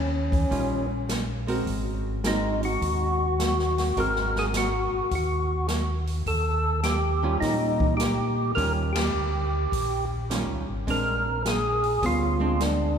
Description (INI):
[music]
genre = soul jazz organ trio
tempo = 104 BPM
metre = 4/4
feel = swing 67% on 8ths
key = unclear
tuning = A4 = 440 Hz
[part]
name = percussive tonewheel organ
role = melody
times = 0.0-13.0 s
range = Db4 to Bb4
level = -26 LUFS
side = equal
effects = slow rotary speaker, overdrive
[part]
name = mellow tonewheel organ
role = bass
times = 0.0-13.0 s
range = Ab1 to Bb2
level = -28 LUFS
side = equal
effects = chorus vibrato, slow rotary speaker
[part]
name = open jazz drum kit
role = drums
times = 0.3-12.8 s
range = hi-hat, kick drum, ride cymbal, snare drum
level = -30 LUFS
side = equal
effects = none
[part]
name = archtop guitar, miked and amplified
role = accompaniment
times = 0.5-12.9 s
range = Eb3 to Bb4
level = -32 LUFS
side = right 2 dB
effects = none
[sound]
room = wet church reverb, RT60 3.3 s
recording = recorded in a church or concert hall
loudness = -23 LUFS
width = side -7 dB against mid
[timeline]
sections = 0.0-13.0 A section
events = band accent 8.9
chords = 0.0 Eb9; 1.7 Ab9; 6.3 Eb9; 10.9 Bb9